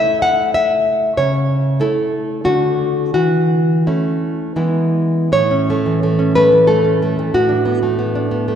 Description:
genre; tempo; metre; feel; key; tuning
romantic piece for solo classical guitar; 76-100 BPM; 3/4; rubato; A major; A4 = 436 Hz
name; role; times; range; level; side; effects
nylon-string guitar; solo; 0.0-8.6 s; A2 to F#5; -13 LUFS; equal; none
room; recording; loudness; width
wet church reverb, RT60 2.8 s; recorded in a church or concert hall; -13 LUFS; side -8 dB against mid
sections
0.0-5.3 A section; 5.3-8.6 B section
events
none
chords
0.0 A; 2.5 D; 3.2 A/E; 4.6 E; 5.3 A; 7.3 Bm7/A

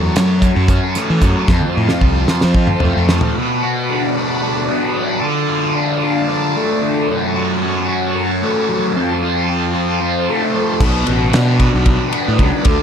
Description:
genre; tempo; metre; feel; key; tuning
psychedelic rock; 225 BPM (eighths); 7/8; straight; unclear; A4 = 440 Hz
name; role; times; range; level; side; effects
bright tonewheel organ; sustained chords; 0.0-12.8 s; F4 to B5; -26 LUFS; right 3 dB; slow rotary speaker, overdrive
fuzz guitar; riff; 0.0-12.8 s; F2 to F#4; -16 LUFS; left 1 dB; distortion, phaser, dub echo
fuzz fingered electric bass; bass; 0.0-3.2, 10.8-12.8 s; A1 to F#3; -16 LUFS; equal; overdrive
damped 70s drum kit; drums; 0.2-3.3, 10.8-12.8 s; crash cymbal, hi-hat, kick drum, ride cymbal, snare drum, toms; -16 LUFS; equal; none
room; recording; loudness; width
small room ambience; echo-heavy mix; -13 LUFS; side -7 dB against mid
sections
0.0-3.4 A section; 3.4-12.8 A section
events
drum fill 1.5-3.4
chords
0.0 F#m; 1.5 F; 3.4 Bm; 5.2 Dm; 7.1 F#m; 9.0 F; 10.8 Bm

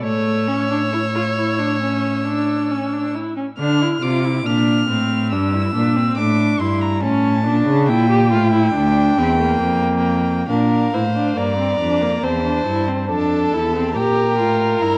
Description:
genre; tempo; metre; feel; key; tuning
classical, baroque-style fugue for string quartet; 69 BPM; 4/4; straight; D minor; A4 = 440 Hz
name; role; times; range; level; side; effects
dark violin; melody; 0.0-15.0 s; F5 to F6; -27 LUFS; equal; none
warm violin; second line; 0.0-3.1, 10.5-15.0 s; A4 to D5; -25 LUFS; equal; none
warm viola; accompaniment; 0.0-15.0 s; A3 to G4; -23 LUFS; equal; none
warm cello; bass; 0.0-15.0 s; D2 to D3; -22 LUFS; equal; none
room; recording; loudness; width
moderate concert hall reverb, RT60 1.8 s; worn, warbling old tape, cassette tape, warbly pitch drift; -18 LUFS; mono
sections
0.0-3.6 A section; 3.6-10.5 B section; 10.5-15.0 A section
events
none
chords
0.0 A; 3.6 Dm; 5.3 Em7b5/G; 7.0 A7; 8.8 Dm; 10.5 Bb; 12.2 Am/E; 14.0 Gm

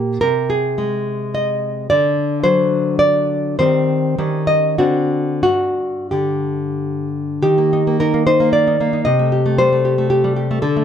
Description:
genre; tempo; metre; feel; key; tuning
romantic piece for solo classical guitar; 88-116 BPM; 3/4; rubato; unclear; A4 = 438 Hz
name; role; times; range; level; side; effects
nylon-string guitar; solo; 0.0-10.8 s; G2 to Eb5; -15 LUFS; equal; none
room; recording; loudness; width
light reverb; close, detailed microphones; -15 LUFS; side -8 dB against mid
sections
0.0-7.4 A section; 7.4-10.8 B section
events
none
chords
0.2 Ab/C; 1.9 D; 3.6 Cm/Eb; 4.2 Eb7; 4.8 D7; 5.4 G5; 7.4 Eb; 9.1 Am7b5/C

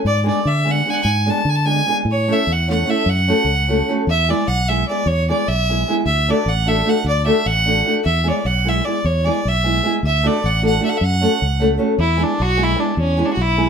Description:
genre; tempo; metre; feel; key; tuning
balkan folk, Balkan wedding band; 302 BPM (eighths); 5/8; straight; unclear; A4 = 440 Hz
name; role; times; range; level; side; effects
fingered electric bass; bass; 0.0-13.7 s; A1 to D3; -19 LUFS; equal; none
clear violin; melody; 0.1-13.7 s; C#4 to A5; -19 LUFS; right 1 dB; plate reverb
nylon-string guitar; accompaniment; 0.2-13.7 s; G#3 to A4; -20 LUFS; equal; none
room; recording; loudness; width
moderate studio reverb, RT60 0.6 s; none; -15 LUFS; side -7 dB against mid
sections
0.0-4.1 A section; 4.1-12.0 B section; 12.0-13.7 B section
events
speeding up 0.0-13.7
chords
0.0 G#dim; 2.1 A; 3.1 F#m; 4.1 E; 6.1 D; 8.1 E; 10.0 D; 11.0 F#m; 12.0 E

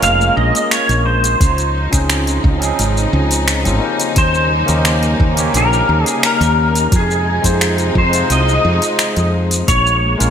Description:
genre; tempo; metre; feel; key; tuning
sunset chillout; 87 BPM; 4/4; straight; F minor; A4 = 441 Hz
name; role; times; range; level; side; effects
pedal steel guitar; melody; 0.0-10.3 s; Ab4 to F5; -17 LUFS; equal; ensemble chorus, digital delay
barky tine electric piano; accompaniment; 0.0-10.3 s; F3 to Eb5; -21 LUFS; moving between left 6 dB and right 6 dB; auto-pan, ping-pong delay
clear symphonic string section; sustained chords; 0.0-10.3 s; C3 to Eb4; -22 LUFS; left 3 dB; none
woody fretless electric bass; bass; 0.0-10.3 s; F1 to F2; -16 LUFS; equal; none
smooth R&B drum kit; drums; 0.0-10.3 s; finger snaps, hi-hat, shaker; -19 LUFS; equal; overdrive, studio reverb, gated reverb
electronic kick drum; drums; 1.4-9.8 s; none; -16 LUFS; equal; overdrive, studio reverb
room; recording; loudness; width
light reverb; bright 1980s-style digital production; -12 LUFS; side -8 dB against mid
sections
0.0-10.3 A section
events
none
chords
0.0 Bbm7; 1.4 Dbmaj9; 4.2 Eb7; 6.9 Fm7; 9.7 Bbm7

